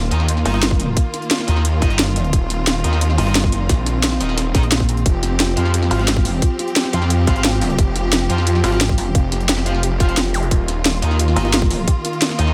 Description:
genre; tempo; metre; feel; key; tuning
dark technical drum and bass; 176 BPM; 4/4; straight; unclear; A4 = 440 Hz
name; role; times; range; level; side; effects
warm studio string section; sustained chords; 0.0-12.5 s; Eb3 to G4; -27 LUFS; equal; sidechain pumping
snarling distorted saw bass; bass; 0.0-12.5 s; Eb1 to F2; -21 LUFS; equal; distortion, overdrive
distorted electric guitar; stabs; 0.1-12.5 s; Eb4 to F5; -30 LUFS; equal; overdrive, delay
drum and bass drum kit; drums; 0.1-12.5 s; hi-hat, snare drum; -22 LUFS; equal; small room reverb
jungle sampler-style drum kit; drums; 0.1-12.5 s; hi-hat, snare drum; -31 LUFS; equal; none
pulsing pluck wobble bass; bass; 0.5-9.1, 11.4-11.9 s; G1 to Bb1; -21 LUFS; equal; chorus
electronic kick drum; drums; 0.7-11.9 s; none; -19 LUFS; equal; small room reverb
soft round pluck; arpeggios; 5.1-12.5 s; F4 to G4; -29 LUFS; equal; ensemble chorus, sidechain pumping, delay
zap; sound effects; 10.3-10.4 s; none; -32 LUFS; equal; none
room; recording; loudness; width
little or no reverb; none; -17 LUFS; mono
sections
0.0-12.5 A section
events
none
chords
0.0 Ebadd9; 5.1 Fmadd9; 10.5 Ebadd9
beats
0.29 0.63 | 0.97 1.31 1.65 1.99 | 2.33 2.67 3.01 3.35 | 3.69 4.04 4.38 4.72 | 5.06 5.40 5.74 6.08 | 6.42 6.76 7.10 7.45 | 7.79 8.13 8.47 8.81 | 9.15 9.49 9.83 10.17 | 10.51 10.85 11.20 11.54 | 11.88 12.22

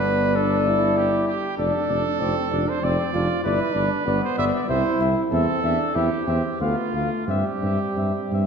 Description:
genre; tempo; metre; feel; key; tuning
classical, brass quintet; 95 BPM; 3/4; uneven beats, rubato; C major; A4 = 440 Hz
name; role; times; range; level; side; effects
mellow cornet; melody; 0.0-8.5 s; D5 to F5; -28 LUFS; left 8 dB; none
clear trumpet; second line; 0.0-8.5 s; F4 to E5; -26 LUFS; right 4 dB; none
bright trombone; accompaniment; 0.0-8.5 s; G3 to F4; -27 LUFS; right 2 dB; none
warm French horn; accompaniment; 0.0-8.5 s; A3 to D4; -31 LUFS; left 4 dB; none
mellow tuba; bass; 0.0-8.5 s; F1 to G2; -24 LUFS; right 2 dB; none
room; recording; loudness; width
wet scoring stage reverb, RT60 1.5 s; dark, warm production, nothing above 10.7 kHz; -20 LUFS; side -6 dB against mid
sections
0.0-8.5 A section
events
none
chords
0.0 G; 1.6 Dm/F; 3.5 G; 4.7 C; 5.3 C/E; 6.6 Dm; 7.3 C/G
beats
0.36 0.98 | 1.59 2.21 2.84 | 3.46 4.07 4.70 | 5.32 5.96 6.61 | 7.28 7.97

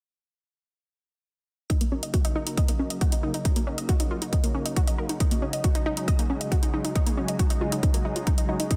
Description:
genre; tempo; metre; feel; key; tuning
uplifting trance; 137 BPM; 4/4; straight; Eb minor; A4 = 438 Hz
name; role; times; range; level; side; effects
analog string pad; sustained chords; 1.7-8.8 s; Db3 to F4; -34 LUFS; equal; ensemble chorus, sidechain pumping
analog pluck; arpeggios; 1.7-8.8 s; Bb3 to Eb5; -34 LUFS; equal; chorus, sidechain pumping, delay
electronic hi-hat; drums; 1.7-8.8 s; none; -36 LUFS; equal; none
electronic kick drum; drums; 1.7-8.8 s; none; -26 LUFS; equal; none
room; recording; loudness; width
light reverb, digital ambience; dense, heavily limited modern master; -25 LUFS; mono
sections
1.7-8.8 A section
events
filter sweep on analog synth pad 1.7-8.8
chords
1.7 Ebm7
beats
| 1.70 2.14 2.58 3.01 | 3.45 3.89 4.33 4.77 | 5.20 5.64 6.08 6.52 | 6.96 7.39 7.83 8.27 | 8.71

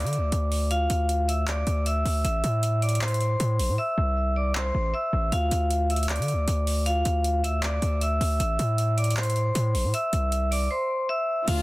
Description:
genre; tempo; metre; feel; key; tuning
hip hop, trap; 156 BPM; 4/4; half-time; unclear; A4 = 440 Hz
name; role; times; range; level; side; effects
vibraphone with hard mallets; melody; 0.0-11.6 s; F4 to E6; -27 LUFS; equal; low-pass filter, digital delay
distorted 808-style bass; bass; 0.0-11.6 s; A1 to D3; -25 LUFS; equal; distortion
booming analog drum machine; drums; 0.0-11.6 s; crash cymbal, handclaps, hi-hat; -33 LUFS; right 1 dB; none
muted studio string section; sustained chords; 11.5-11.6 s; D3 to F4; -31 LUFS; left 2 dB; none
room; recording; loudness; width
small room ambience; dense, heavily limited modern master; -23 LUFS; side -19 dB against mid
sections
0.0-11.5 A section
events
hi-hats muted 3.8-5.3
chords
0.0 Dmadd9; 2.2 Am; 5.3 Dmadd9; 8.4 Am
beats
0.32 | 0.71 1.09 1.48 1.86 | 2.25 2.63 3.02 3.40 | 3.78 4.17 4.55 4.94 | 5.32 5.71 6.09 6.48 | 6.86 7.25 7.63 8.02 | 8.40 8.78 9.17 9.55 | 9.94 10.32 10.71 11.09 | 11.48

